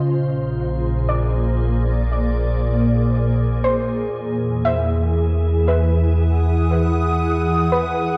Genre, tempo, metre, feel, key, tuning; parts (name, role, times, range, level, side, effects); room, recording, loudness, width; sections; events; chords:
ambient; 59 BPM; 4/4; straight; A4 = 440 Hz
glassy FM pad; sustained chords; 0.0-8.2 s; Bb2 to D#6; -22 LUFS; equal; ensemble chorus, built-in reverb
soft round pluck; arpeggios; 0.0-8.2 s; B4 to F5; -27 LUFS; equal; lush chorus, dub echo
round analog bass; bass; 0.0-8.2 s; Bb1 to E2; -23 LUFS; equal; tube saturation
wet echo chamber reverb, RT60 2.1 s; echo-heavy mix; -19 LUFS; mono
0.0-8.2 A section
0.1 Bb7; 4.1 Emaj7